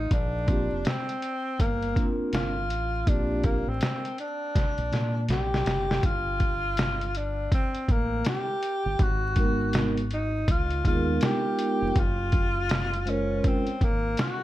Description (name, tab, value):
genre	hip hop, jazz-hop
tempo	81 BPM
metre	4/4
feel	swing 64% on 16ths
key	Bb major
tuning	A4 = 440 Hz
part	breathy tenor saxophone	melody	0.0-14.4 s	Bb3 to G4	-29 LUFS	equal	analog delay
part	deep dub fingered electric bass	bass	0.0-14.1 s	F1 to Bb2	-30 LUFS	equal	none
part	trip hop sampler-style drum kit	drums	0.1-14.4 s	hi-hat, kick drum, snare drum	-26 LUFS	equal	none
part	vibraphone with soft mallets	accompaniment	0.5-3.6, 9.3-13.6 s	Ab3 to C5	-28 LUFS	right 1 dB	none
room	light reverb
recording	dark, warm production, vinyl crackle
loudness	-24 LUFS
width	side -15 dB against mid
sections	0.0-6.0 A section; 6.0-14.4 B section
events	drum fill 4.5-6.0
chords	0.1 Bb6; 6.0 N.C.; 9.0 Abm7; 10.5 Db13; 12.0 Gbmaj9#11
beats	| 0.10 0.85 1.59 2.33 | 3.07 3.81 4.55 5.29 | 6.03 6.77 7.51 8.25 | 8.99 9.73 10.47 11.22 | 11.96 12.70 13.44 14.18